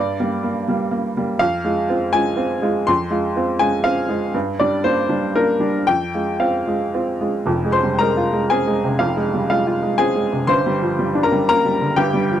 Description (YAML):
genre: neoclassical minimalist piano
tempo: 112-125 BPM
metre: 3/4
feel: rubato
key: F dorian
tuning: A4 = 439 Hz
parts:
  - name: clear upright piano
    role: solo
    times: 0.0-12.4 s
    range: F1 to C6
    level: -17 LUFS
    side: equal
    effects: none
room: light reverb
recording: dry, close 1970s-style studio recording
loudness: -17 LUFS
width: side -10 dB against mid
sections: 0.0-7.5 A section; 7.5-12.4 B section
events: none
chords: 0.0 Gm; 1.4 Fm; 4.3 Gm; 5.9 Fm; 10.5 Gm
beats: 0.44 0.93 | 1.41 1.90 2.38 | 2.87 3.35 3.84 | 4.34 4.84 5.35 | 5.87 6.40 6.93 | 7.46 7.97 8.47 | 8.97 9.47 9.98 | 10.48 10.98 11.48 | 11.97